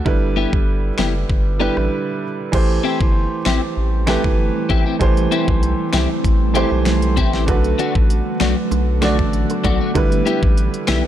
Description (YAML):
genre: dancehall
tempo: 97 BPM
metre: 4/4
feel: straight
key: unclear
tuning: A4 = 440 Hz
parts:
  - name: warm grand piano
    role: accompaniment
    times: 0.0-11.1 s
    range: D3 to D5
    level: -21 LUFS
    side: right 4 dB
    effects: none
  - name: saturated sub bass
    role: bass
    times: 0.1-11.0 s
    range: F#1 to C2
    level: -20 LUFS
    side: equal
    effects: none
  - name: pop drum kit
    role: drums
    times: 0.1-11.0 s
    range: crash cymbal, finger snaps, hi-hat, kick drum, rim click, snare drum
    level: -19 LUFS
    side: equal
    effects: none
  - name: clean electric guitar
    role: arpeggios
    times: 0.4-11.1 s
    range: A3 to G4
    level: -24 LUFS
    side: left 8 dB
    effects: ensemble chorus
  - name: ethereal airy pad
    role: sustained chords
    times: 3.7-11.1 s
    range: D3 to A4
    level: -25 LUFS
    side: equal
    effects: ensemble chorus, built-in reverb, phaser, sidechain pumping
  - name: bongos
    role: percussion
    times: 7.5-11.0 s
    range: none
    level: -31 LUFS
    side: right 6 dB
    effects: none
room: digital ambience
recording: none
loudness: -15 LUFS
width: side -11 dB against mid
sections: 0.0-2.5 A section; 2.5-11.1 B section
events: break 1.9-2.5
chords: 0.1 G6; 2.5 Am7; 7.5 Bm7; 10.0 G6